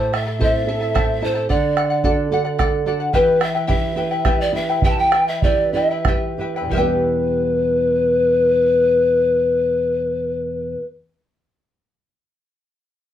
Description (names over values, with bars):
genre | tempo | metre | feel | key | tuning
andean folk, Andean ensemble | 59-73 BPM (dotted quarters) | 6/8 | straight | E minor | A4 = 440 Hz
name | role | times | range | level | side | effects
mellow hollow pan flute | melody | 0.0-10.8 s | B4 to A5 | -18 LUFS | left 1 dB | none
charango | accompaniment | 0.0-10.9 s | E4 to A5 | -24 LUFS | left 4 dB | none
nylon-string guitar | accompaniment | 0.0-10.9 s | E2 to B4 | -24 LUFS | right 3 dB | none
bombo | percussion | 0.1-7.0 s | none | -21 LUFS | right 2 dB | none
room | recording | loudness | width
wet studio ambience, RT60 0.5 s | band playing live in one room | -16 LUFS | side -11 dB against mid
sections
0.0-6.7 A section; 6.7-10.8 B section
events
slowing down 3.1-6.7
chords
0.0 Am; 1.5 D; 3.1 Em